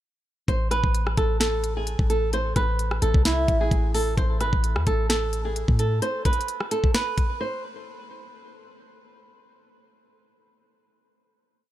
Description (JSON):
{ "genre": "hip hop, trap", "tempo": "130 BPM", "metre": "4/4", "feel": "half-time", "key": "A harmonic minor", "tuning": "A4 = 440 Hz", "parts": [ { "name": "flamenco guitar", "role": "melody", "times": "0.5-7.6 s", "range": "E4 to C5", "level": "-26 LUFS", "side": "right 2 dB", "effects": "low-pass filter, ping-pong delay" }, { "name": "clean 808-style bass", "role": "bass", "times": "0.5-6.0 s", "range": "G#1 to A2", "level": "-25 LUFS", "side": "equal", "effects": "none" }, { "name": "trap drum kit", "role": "drums", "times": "0.5-7.3 s", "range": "hi-hat, kick drum, rim click, snare drum", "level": "-24 LUFS", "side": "equal", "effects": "none" } ], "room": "little or no reverb", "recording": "none", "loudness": "-21 LUFS", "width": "side -13 dB against mid", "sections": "0.5-7.9 hook", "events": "break 7.4-7.9", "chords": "0.5 Asus2" }